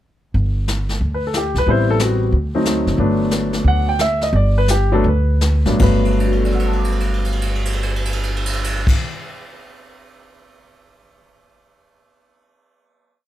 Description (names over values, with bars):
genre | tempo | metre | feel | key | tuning
jazz piano trio | 153-182 BPM | 4/4 | swing 64% on 8ths | G major | A4 = 440 Hz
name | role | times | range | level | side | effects
upright bass | bass | 0.3-8.9 s | F#1 to D2 | -18 LUFS | equal | none
jazz brush drum kit | drums | 0.3-10.4 s | brushed snare drum, crash cymbal, hi-hat, kick drum, ride cymbal, snare drum | -23 LUFS | left 1 dB | none
warm grand piano | melody | 1.1-9.2 s | G2 to D6 | -19 LUFS | left 1 dB | none
room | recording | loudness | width
little or no reverb | close, detailed microphones | -15 LUFS | side -13 dB against mid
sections
0.4-5.8 A section; 5.8-8.9 final chord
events
slowing down 3.0-5.8; drum fill 6.0-8.8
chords
0.4 G5; 1.7 Am9; 2.3 D7b9; 3.0 Gmaj9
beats
| 0.35 0.68 1.01 1.34 | 1.67 2.00 2.33 2.66 | 2.99 3.32 3.65 3.99 | 4.33 4.69 5.05 5.42 | 5.81 6.20 6.59 6.98 | 7.37 7.77 8.16 8.55